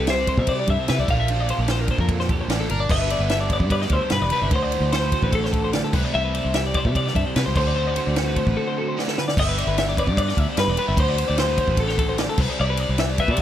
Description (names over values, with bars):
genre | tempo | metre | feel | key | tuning
math rock and midwest emo | 149 BPM | 4/4 | straight | G major | A4 = 439 Hz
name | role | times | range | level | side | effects
twelve-string electric guitar | melody | 0.0-13.4 s | A4 to F5 | -26 LUFS | left 2 dB | digital delay
twelve-string electric guitar | accompaniment | 0.0-9.9 s | G2 to A4 | -30 LUFS | right 6 dB | ensemble chorus
twelve-string electric guitar | arpeggios | 0.0-13.4 s | A4 to E5 | -28 LUFS | left 4 dB | lush chorus
biting overdriven guitar | riff | 0.0-13.4 s | G2 to G4 | -29 LUFS | right 2 dB | none
fingered electric bass | bass | 0.0-13.4 s | E1 to C3 | -24 LUFS | equal | none
compact cocktail drum kit | drums | 0.1-13.4 s | crash cymbal, kick drum, ride cymbal, snare drum | -25 LUFS | equal | none
room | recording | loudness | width
little or no reverb | none | -19 LUFS | side -11 dB against mid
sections
0.0-9.4 A section; 9.4-13.4 B section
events
drum fill 9.0-9.4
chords
0.0 C69; 1.1 Bbmaj7; 2.9 G69; 4.5 D9; 5.9 C69; 7.6 D7; 9.4 G6; 11.0 D7; 12.4 Cadd9